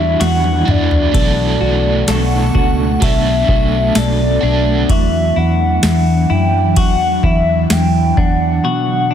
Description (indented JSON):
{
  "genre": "dream pop",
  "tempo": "64 BPM",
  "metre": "4/4",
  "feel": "straight",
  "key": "B minor",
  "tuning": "A4 = 440 Hz",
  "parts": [
    { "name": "warbly nostalgic lead", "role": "melody", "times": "0.0-9.1 s", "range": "D5 to G5", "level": "-18 LUFS", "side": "left 1 dB", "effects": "chorus, tremolo, digital delay" },
    { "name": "overdriven electric guitar", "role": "accompaniment", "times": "0.0-5.4 s", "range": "B2 to F#4", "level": "-21 LUFS", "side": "right 5 dB", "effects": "tremolo, lush chorus" },
    { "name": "ethereal airy pad", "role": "sustained chords", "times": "0.0-9.1 s", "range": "D3 to E4", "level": "-20 LUFS", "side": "right 1 dB", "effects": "ensemble chorus, built-in reverb" },
    { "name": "semi-hollow electric guitar", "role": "arpeggios", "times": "0.0-9.1 s", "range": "B2 to A4", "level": "-21 LUFS", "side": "left 5 dB", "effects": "wide subtle chorus, digital delay" },
    { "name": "vintage muted fingered electric bass", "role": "bass", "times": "0.0-8.6 s", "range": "B1 to F#2", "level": "-16 LUFS", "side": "equal", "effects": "none" },
    { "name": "booming analog drum machine", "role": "drums", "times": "0.2-8.4 s", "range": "kick drum, ride cymbal, snare drum, tambourine, toms", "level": "-17 LUFS", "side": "equal", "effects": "overdrive" },
    { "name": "shimmering bell with halo", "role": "texture", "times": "2.1-4.7 s", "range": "C#6", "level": "-34 LUFS", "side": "equal", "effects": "ensemble chorus, phaser, digital delay" }
  ],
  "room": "light reverb, digital ambience",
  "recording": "dense, heavily limited modern master",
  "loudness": "-12 LUFS",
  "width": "side -9 dB against mid",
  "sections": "0.0-9.1 A section",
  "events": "drum fill 0.2-1.1",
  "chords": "0.0 Em9; 1.1 Bm7; 4.9 Esus2; 8.6 Bm7"
}